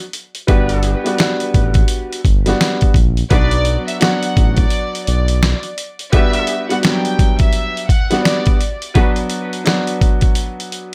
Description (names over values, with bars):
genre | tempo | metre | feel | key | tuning
hip hop, boom-bap hip-hop | 85 BPM | 4/4 | swing 61% on 16ths | B minor | A4 = 440 Hz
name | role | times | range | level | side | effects
dark upright piano | accompaniment | 0.0-10.9 s | F#3 to F#4 | -22 LUFS | equal | cassette tape, high-pass filter, low-pass filter
boom bap sampler-style drum kit | drums | 0.1-10.9 s | hi-hat, kick drum, snare drum | -18 LUFS | equal | none
warm horn section | stabs | 0.5-9.2 s | B3 to B4 | -30 LUFS | equal | high-pass filter, low-pass filter, tape echo
smooth synth bass | bass | 0.5-5.5 s | G1 to B1 | -19 LUFS | equal | none
warm studio violin section | melody | 3.3-8.6 s | D5 to G5 | -25 LUFS | equal | high-pass filter, low-pass filter, tape echo
room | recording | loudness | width
light reverb | none | -16 LUFS | mono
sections
0.0-10.9 A section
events
none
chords
0.5 Gmaj7; 3.3 Bm; 6.1 Gmaj7; 9.0 Bm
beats
| 0.48 1.19 1.90 2.60 | 3.31 4.01 4.72 5.42 | 6.13 6.84 7.54 8.25 | 8.95 9.66 10.37